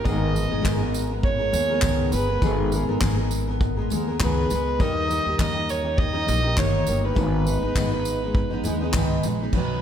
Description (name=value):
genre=acoustic pop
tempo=101 BPM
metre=4/4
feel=swing 55% on 16ths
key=G# harmonic minor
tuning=A4 = 441 Hz
part: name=dark violin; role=melody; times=0.0-9.8 s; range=B4 to D#5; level=-27 LUFS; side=right 2 dB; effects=slapback echo
part: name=picked steel-string acoustic guitar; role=accompaniment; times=0.0-9.8 s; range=G#2 to B4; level=-26 LUFS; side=left 1 dB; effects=double-tracked left and right
part: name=warm grand piano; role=accompaniment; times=0.0-9.6 s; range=G3 to A#5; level=-34 LUFS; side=left 6 dB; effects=slapback echo
part: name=upright bass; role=bass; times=0.0-9.8 s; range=G1 to D#2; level=-26 LUFS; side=equal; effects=none
part: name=unplugged drum kit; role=drums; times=0.1-9.7 s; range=crash cymbal, handclaps, kick drum, tambourine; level=-26 LUFS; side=equal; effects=none
part: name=tambourine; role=percussion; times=0.1-9.4 s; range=none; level=-45 LUFS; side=left 8 dB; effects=none
room=light reverb, studio reverb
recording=none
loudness=-20 LUFS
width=side -9 dB against mid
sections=0.0-9.5 A section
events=none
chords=0.1 G#madd9; 4.8 D#; 7.2 G#m